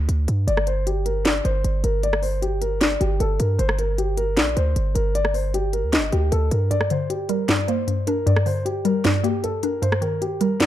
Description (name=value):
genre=hip hop, trap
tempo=154 BPM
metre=4/4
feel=half-time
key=G minor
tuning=A4 = 440 Hz
part: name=hard-hitting 808-style bass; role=bass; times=0.0-6.7 s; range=G1 to G2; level=-22 LUFS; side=equal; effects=none
part: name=trap drum kit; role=drums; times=0.1-10.7 s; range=hi-hat, rim click, snare drum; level=-24 LUFS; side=equal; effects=none
part: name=dark concert grand piano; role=melody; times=0.5-10.7 s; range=G4 to Eb5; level=-25 LUFS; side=left 2 dB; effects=low-pass filter, ping-pong delay
part: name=hollow square pluck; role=accompaniment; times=6.7-10.7 s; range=G2 to D4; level=-22 LUFS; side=equal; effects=chorus, low-pass filter
room=digital ambience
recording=dark, warm production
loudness=-19 LUFS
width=side -12 dB against mid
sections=0.0-10.7 A section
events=break 0.0-0.5; kick muted 6.7-10.7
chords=0.5 Gm; 9.8 Eb/G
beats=0.09 | 0.47 0.86 1.25 1.64 | 2.03 2.42 2.81 3.20 | 3.59 3.98 4.37 4.76 | 5.15 5.54 5.93 6.32 | 6.71 7.10 7.49 7.88 | 8.27 8.66 9.05 9.44 | 9.83 10.22 10.61